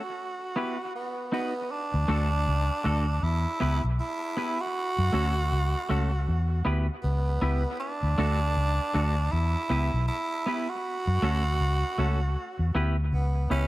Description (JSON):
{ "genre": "dub reggae", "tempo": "79 BPM", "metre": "4/4", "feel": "swing 59% on 16ths", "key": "E dorian", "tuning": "A4 = 440 Hz", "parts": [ { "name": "raspy tenor saxophone", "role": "melody", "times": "0.0-13.7 s", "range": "B3 to F#4", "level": "-30 LUFS", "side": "right 2 dB", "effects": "dub echo" }, { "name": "clean electric guitar", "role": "accompaniment", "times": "0.6-13.7 s", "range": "A3 to B4", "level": "-32 LUFS", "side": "equal", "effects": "wide subtle chorus, dub echo" }, { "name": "vintage muted fingered electric bass", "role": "bass", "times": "1.9-13.7 s", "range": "B1 to F#2", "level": "-25 LUFS", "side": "equal", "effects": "none" } ], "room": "light reverb, small room reverb", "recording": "none", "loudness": "-25 LUFS", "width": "side -17 dB against mid", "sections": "0.0-1.7 A section; 1.7-13.7 A section", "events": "break 0.0-1.7", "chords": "0.2 Em; 0.9 B; 1.7 D; 3.2 Em; 4.8 F#m; 6.3 Em; 7.8 D; 9.3 Em; 10.8 F#m; 12.4 Em", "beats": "0.18 0.95 | 1.71 2.47 3.23 3.99 | 4.75 5.51 6.28 7.04 | 7.80 8.56 9.32 10.08 | 10.84 11.61 12.37 13.13" }